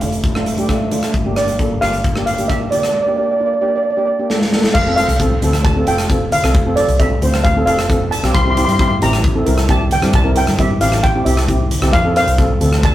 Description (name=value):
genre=calypso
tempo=133 BPM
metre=4/4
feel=straight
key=F major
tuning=A4 = 436 Hz
part: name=steel pan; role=melody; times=0.0-12.9 s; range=D5 to C6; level=-18 LUFS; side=right 1 dB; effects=none
part: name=steel pan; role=accompaniment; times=0.0-12.8 s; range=A3 to C5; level=-20 LUFS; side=right 1 dB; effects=none
part: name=fingered electric bass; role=bass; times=0.0-12.9 s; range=F1 to G2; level=-18 LUFS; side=equal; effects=none
part: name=big rock drum kit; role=drums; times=0.0-12.9 s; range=crash cymbal, hi-hat, kick drum, rim click, snare drum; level=-18 LUFS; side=equal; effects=none
part: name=congas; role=percussion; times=0.0-12.8 s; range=none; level=-29 LUFS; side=left 1 dB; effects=none
room=wet studio reverb, RT60 0.6 s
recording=rough rehearsal-room recording, warm saturation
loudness=-13 LUFS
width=side -13 dB against mid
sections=0.0-4.7 A section; 4.7-12.9 B section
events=drum fill 4.3-4.7, 11.6-11.9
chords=0.0 Dm/F; 1.1 Gm; 4.7 F; 8.3 C; 11.9 F